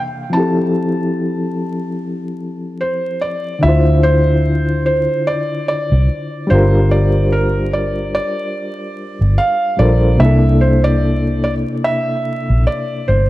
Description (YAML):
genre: lo-fi hip hop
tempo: 73 BPM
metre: 4/4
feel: swing 56% on 16ths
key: D minor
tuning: A4 = 440 Hz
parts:
  - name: overdriven reed electric piano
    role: accompaniment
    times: 0.0-13.3 s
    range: C3 to C5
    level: -18 LUFS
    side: left 1 dB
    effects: fast tremolo, cassette tape, low-pass filter
  - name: felt-muted upright piano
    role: melody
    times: 0.3-13.3 s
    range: Bb4 to A5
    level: -20 LUFS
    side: right 1 dB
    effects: low-pass filter, analog delay
  - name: vintage muted fingered electric bass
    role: bass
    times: 3.6-13.3 s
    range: G1 to D2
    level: -14 LUFS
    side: equal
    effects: none
room: light reverb, small room ambience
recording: vinyl crackle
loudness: -13 LUFS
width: side -16 dB against mid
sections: 0.0-3.6 A section; 3.6-13.3 B section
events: none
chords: 0.3 Fmaj7; 3.6 Dm9; 6.5 Gm11; 10.2 C13